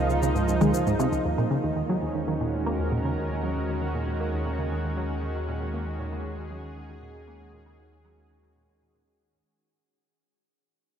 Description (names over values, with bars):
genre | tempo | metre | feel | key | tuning
ambient, sequencer-driven space music | 117 BPM | 4/4 | straight | Eb dorian | A4 = 440 Hz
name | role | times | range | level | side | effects
soft octave-layered synth lead | melody | 0.0-0.7 s | F5 | -35 LUFS | right 1 dB | chorus, phaser, tape echo
lush unison pad | sustained chords | 0.0-9.5 s | Eb3 to C5 | -30 LUFS | right 1 dB | chorus
tight sequenced synth | riff | 0.0-9.4 s | Db2 to Bb3 | -29 LUFS | right 2 dB | chorus, tape echo
warm sub bass | bass | 0.0-9.4 s | Db2 to Eb2 | -32 LUFS | equal | none
electronic cabasa and toms | percussion | 0.1-1.2 s | none | -30 LUFS | left 5 dB | tape echo
room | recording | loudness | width
wet huge ambient reverb, RT60 8.5 s | none | -25 LUFS | side -8 dB against mid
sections
0.0-1.3 A section; 1.3-9.5 B section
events
filter sweep on synth arpeggio sound 0.0-1.3; fade-out on synth arpeggio sound 1.3-9.5; fade-out 1.3-9.5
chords
0.0 Db6; 1.3 Ebm